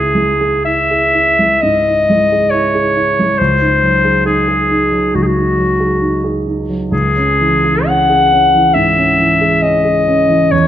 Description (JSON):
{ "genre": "classical, romantic duo for clarinet and grand piano", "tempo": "68 BPM", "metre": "4/4", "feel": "rubato", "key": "C# minor", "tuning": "A4 = 440 Hz", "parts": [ { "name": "bright clarinet", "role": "melody", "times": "0.0-10.7 s", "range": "F#4 to F#5", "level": "-12 LUFS", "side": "left 2 dB", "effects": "none" }, { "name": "dark concert grand piano", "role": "accompaniment", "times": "0.0-10.7 s", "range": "C#2 to G#4", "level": "-15 LUFS", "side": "right 2 dB", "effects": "none" } ], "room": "moderate recital hall reverb, RT60 1.7 s", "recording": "none", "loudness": "-10 LUFS", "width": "side -11 dB against mid", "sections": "0.0-10.7 A section", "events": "none", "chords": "0.0 C#m; 3.4 G#7/C#; 6.9 C#m" }